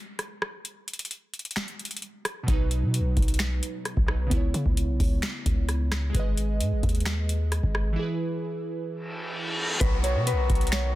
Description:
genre	hip hop, trap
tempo	131 BPM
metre	4/4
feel	half-time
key	B major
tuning	A4 = 444 Hz
part	booming analog drum machine	drums	0.2-10.8 s	finger snaps, hi-hat, kick drum, rim click, snare drum	-27 LUFS	equal	soft clipping on snare
part	glassy digital keys	accompaniment	2.4-9.8 s	B2 to D#5	-32 LUFS	right 2 dB	chorus, low-pass filter
part	warm 808-style bass	bass	2.5-10.9 s	G#1 to C#3	-26 LUFS	equal	none
part	reverse cymbal and downlifter	sound effects	9.0-11.0 s	none	-31 LUFS	equal	none
part	mellow electric guitar	melody	9.8-10.9 s	B4 to C#5	-30 LUFS	left 2 dB	low-pass filter
part	accordion	sustained chords	9.8-11.0 s	D#3 to F#4	-33 LUFS	left 2 dB	light tremolo tuning
room	digital ambience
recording	dense, heavily limited modern master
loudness	-24 LUFS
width	side -16 dB against mid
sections	0.0-9.8 A section; 9.8-11.0 B section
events	break 0.0-2.5, 8.0-9.8; reverse cymbal 9.0-9.8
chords	0.0 N.C.; 2.5 B; 4.3 C#m7; 6.1 G#m; 8.0 E; 9.8 B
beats	0.19 | 0.65 1.11 1.56 2.02 | 2.48 2.94 3.40 3.85 | 4.31 4.77 5.23 5.69 | 6.14 6.60 7.06 7.52 | 7.98 8.44 8.89 9.35 | 9.81 10.27 10.72

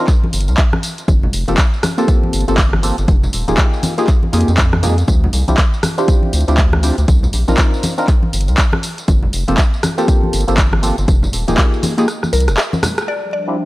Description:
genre	deep house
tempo	120 BPM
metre	4/4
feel	swing 60% on 16ths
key	unclear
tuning	A4 = 440 Hz
part	percussive organ stab	stabs	0.0-13.6 s	Bb3 to Bb4	-19 LUFS	equal	chorus, phaser, sidechain pumping, analog delay
part	electronic kick drum	drums	0.1-11.7 s	none	-13 LUFS	equal	none
part	punchy analog drum machine	drums	0.1-13.1 s	handclaps, hi-hat, rim click, tambourine	-20 LUFS	equal	none
part	congas	percussion	0.2-12.9 s	none	-22 LUFS	left 1 dB	none
part	round analog bass	bass	0.3-12.6 s	Eb1 to F2	-16 LUFS	equal	sidechain pumping
part	mallet-like synth pluck	melody	12.3-13.7 s	Bb4 to D5	-22 LUFS	left 2 dB	chorus, phaser
part	warbly tape-like pad	sustained chords	13.3-13.7 s	F3 to E5	-23 LUFS	equal	chorus, built-in reverb, sidechain pumping
room	digital ambience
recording	dry, gritty hardware recording, transformer saturation, vinyl crackle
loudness	-12 LUFS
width	side -18 dB against mid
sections	0.0-13.1 A section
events	kick drops out 12.1-13.1; drum fill 12.1-13.1; band accent 13.0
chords	0.0 C5; 1.1 Gm11; 3.1 Fm11; 5.1 Dm11; 7.1 Cm11; 9.1 Gm11; 11.1 Fm11; 13.1 Dm11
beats	0.08 0.58 | 1.08 1.58 2.08 2.58 | 3.08 3.58 4.08 4.58 | 5.08 5.58 6.08 6.58 | 7.08 7.58 8.08 8.58 | 9.08 9.58 10.08 10.58 | 11.08 11.58 12.08 12.58 | 13.08 13.58

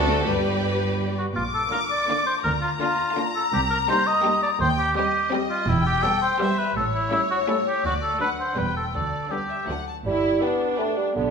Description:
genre	cinematic, playful, whimsical film cue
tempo	166 BPM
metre	3/4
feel	straight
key	Bb major, G major from 5.7 s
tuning	A4 = 439 Hz
part	warm studio violin section	melody	0.0-11.1 s	C#5 to D6	-28 LUFS	left 6 dB	none
part	rich studio violin section	second line	0.0-11.1 s	A3 to B4	-31 LUFS	left 3 dB	none
part	clear studio viola section	accompaniment	0.0-11.3 s	D3 to G4	-30 LUFS	right 2 dB	none
part	clear tuba	bass	0.0-1.2 s	G1 to D2	-30 LUFS	right 3 dB	none
part	rich studio double bass section	bass	0.0-11.3 s	E1 to G2	-29 LUFS	right 2 dB	none
part	warm studio cello section	bass	0.0-11.3 s	C2 to A3	-31 LUFS	right 2 dB	none
part	warm oboe	second line	1.2-9.7 s	E4 to Eb5	-24 LUFS	equal	none
part	mellow bassoon	accompaniment	10.1-11.3 s	D3 to B3	-23 LUFS	right 2 dB	none
room	wet scoring stage reverb, RT60 1.6 s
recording	minimal, uncompressed stereo recording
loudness	-21 LUFS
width	side -6 dB against mid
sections	0.0-1.4 A section; 1.4-10.1 B section; 10.1-11.3 A section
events	none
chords	0.3 G; 1.4 Bb; 2.4 Bb/D; 3.5 Cm7; 4.6 Cm/Eb; 5.7 Em; 6.8 A7; 7.8 D; 8.6 Em7; 9.0 G/D; 9.7 D; 10.1 G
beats	| 0.25 0.62 0.99 | 1.36 1.73 2.09 | 2.45 2.81 3.17 | 3.53 3.89 4.25 | 4.61 4.97 5.33 | 5.68 6.04 6.40 | 6.76 7.12 7.48 | 7.85 8.21 8.58 | 8.95 9.32 9.69 | 10.07 10.43 10.79 | 11.16

